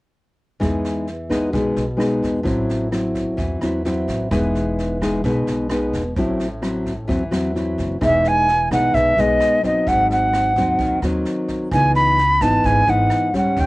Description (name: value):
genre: bossa nova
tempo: 130 BPM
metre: 4/4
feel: straight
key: E major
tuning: A4 = 441 Hz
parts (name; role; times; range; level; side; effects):
- nylon-string guitar; accompaniment; 0.6-13.7 s; G#2 to E4; -20 LUFS; left 1 dB; none
- upright bass; bass; 0.6-13.7 s; E1 to E2; -25 LUFS; equal; none
- jazz brush drum kit; drums; 0.6-13.7 s; kick drum, rim click, snare drum; -30 LUFS; equal; cassette tape
- concert flute; melody; 8.0-13.7 s; D#5 to B5; -16 LUFS; equal; none
room: moderate booth ambience, RT60 0.3 s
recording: home recording on cassette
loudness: -17 LUFS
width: side -20 dB against mid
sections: 0.6-8.0 A section; 8.0-13.7 B section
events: none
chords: 0.6 Emaj7; 2.5 Am6; 4.3 Emaj7; 6.2 Am6; 8.0 Emaj7; 9.9 G#7; 11.7 C#m9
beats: | 0.61 1.07 1.53 2.00 | 2.46 2.92 3.38 3.85 | 4.31 4.77 5.24 5.70 | 6.16 6.63 7.09 7.55 | 8.02 8.48 8.94 9.40 | 9.87 10.33 10.79 11.25 | 11.72 12.18 12.64 13.10 | 13.57